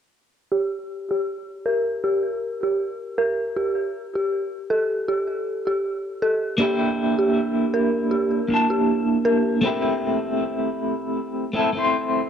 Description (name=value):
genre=trip hop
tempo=79 BPM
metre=4/4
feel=swing 55% on 16ths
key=G dorian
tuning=A4 = 440 Hz
part: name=dark detuned synth bell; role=arpeggios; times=0.5-9.6 s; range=G4 to Bb4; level=-23 LUFS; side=equal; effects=chorus, vintage 12-bit sampler grit, low-pass filter, digital delay
part: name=electric guitar at the edge of break-up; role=accompaniment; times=6.6-12.3 s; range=A3 to A5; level=-20 LUFS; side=equal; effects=tremolo, tape echo
room=moderate spring reverb, RT60 2.9 s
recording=dark, warm production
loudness=-21 LUFS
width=side -8 dB against mid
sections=0.5-12.3 A section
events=filter sweep on synth bell 0.5-12.3; break 9.6-12.3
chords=0.5 Gm; 3.6 Gsus2; 6.6 Gm69/Bb; 9.6 Am7